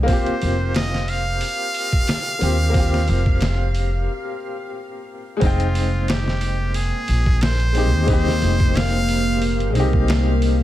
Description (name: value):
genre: trip hop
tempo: 90 BPM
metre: 4/4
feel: swing 55% on 16ths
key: F minor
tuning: A4 = 440 Hz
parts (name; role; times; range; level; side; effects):
- bright upright piano; accompaniment; 0.0-10.6 s; Ab3 to G5; -25 LUFS; left 2 dB; tremolo, vintage 12-bit sampler grit, tape echo
- upright bass; bass; 0.0-10.6 s; F1 to Eb2; -20 LUFS; equal; none
- trumpet with straight mute; melody; 0.1-9.8 s; F4 to F5; -27 LUFS; right 1 dB; tape echo
- trip hop sampler-style drum kit; drums; 0.1-10.6 s; hi-hat, kick drum, snare drum; -22 LUFS; equal; small room ambience
- deep dark ambient pad; sustained chords; 6.2-10.6 s; Bb3 to Bb4; -26 LUFS; left 1 dB; chorus, built-in reverb
room: studio ambience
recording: none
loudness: -17 LUFS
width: side -14 dB against mid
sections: 0.0-5.4 A section; 5.4-10.6 B section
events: break 4.1-5.4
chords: 0.1 Eb69/F (rootless); 5.4 Fm9